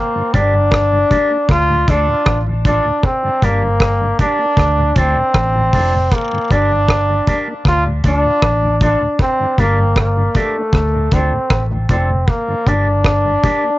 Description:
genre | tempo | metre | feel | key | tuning
roots reggae | 78 BPM | 4/4 | straight | G minor | A4 = 440 Hz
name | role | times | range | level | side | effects
bright trombone | melody | 0.0-13.8 s | A3 to F4 | -16 LUFS | equal | cassette tape, tape echo
mellow tonewheel organ | accompaniment | 0.2-13.7 s | D2 to D4 | -26 LUFS | left 1 dB | overdrive, chorus vibrato, tape echo
electric guitar with an envelope filter | accompaniment | 0.3-13.6 s | D4 to D5 | -25 LUFS | right 1 dB | tape echo
vintage muted fingered electric bass | bass | 0.3-13.4 s | F1 to D2 | -17 LUFS | equal | none
deep reggae drum kit | drums | 0.3-13.6 s | hi-hat, kick drum, rim click | -16 LUFS | equal | none
cowbell and jawbone-type rattle | percussion | 0.7-13.2 s | none | -26 LUFS | right 4 dB | none
room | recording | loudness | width
light reverb | home recording on cassette, nothing above 7.7 kHz | -12 LUFS | side -17 dB against mid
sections
0.0-13.8 A section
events
none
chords
0.0 Gm; 1.5 Dm; 3.0 Gm; 4.6 Dm; 6.1 Gm; 7.7 Dm; 9.2 Gm; 10.7 Dm; 12.3 Gm

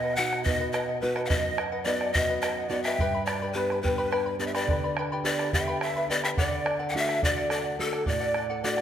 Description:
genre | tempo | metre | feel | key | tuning
andean folk, Andean ensemble | 71 BPM (dotted quarters) | 6/8 | straight | unclear | A4 = 440 Hz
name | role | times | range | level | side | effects
breathy large pan pipes | melody | 0.0-8.8 s | A4 to F#5 | -28 LUFS | left 3 dB | none
mellow quena | second line | 0.0-8.8 s | A4 to A5 | -34 LUFS | right 5 dB | slapback echo
charango | accompaniment | 0.0-8.8 s | G4 to B5 | -33 LUFS | left 4 dB | none
nylon-string guitar | accompaniment | 0.0-8.8 s | F#2 to G4 | -33 LUFS | right 3 dB | none
bombo | percussion | 0.2-8.8 s | none | -32 LUFS | right 2 dB | none
room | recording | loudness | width
moderate scoring stage reverb, RT60 1.8 s | faint mains hum | -25 LUFS | side -9 dB against mid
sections
0.0-8.8 A section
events
none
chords
0.0 B; 3.0 G; 6.4 D

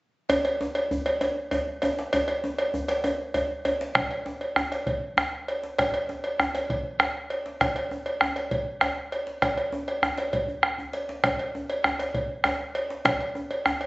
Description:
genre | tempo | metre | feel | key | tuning
west african traditional, West African drum ensemble | 132 BPM (dotted quarters) | 12/8 | straight | none | none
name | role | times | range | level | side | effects
cowbell | percussion | 0.3-13.9 s | none | -28 LUFS | equal | none
djembe | percussion | 0.3-13.8 s | none | -33 LUFS | equal | none
bombo | percussion | 4.0-13.9 s | none | -24 LUFS | equal | none
room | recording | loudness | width
moderate studio reverb, RT60 0.6 s | recorded on a phone in the room, studio reverb, compression, nothing above 7.9 kHz | -24 LUFS | side -21 dB against mid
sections
0.3-4.0 A section; 4.0-13.9 B section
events
drum fill 10.5-11.2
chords
none

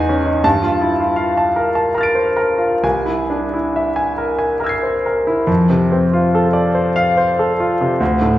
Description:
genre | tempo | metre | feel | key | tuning
classical, impressionist solo piano | 63-85 BPM | 3/4 | rubato | F major | A4 = 439 Hz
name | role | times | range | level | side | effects
clear concert grand piano | solo | 0.0-8.4 s | C2 to D7 | -14 LUFS | equal | none
room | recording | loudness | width
wet recital hall reverb, RT60 1.6 s | recorded in a church or concert hall | -14 LUFS | side -14 dB against mid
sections
0.0-5.5 A section; 5.5-8.4 B section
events
none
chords
0.4 Gm9; 2.8 Caug7; 5.5 F6

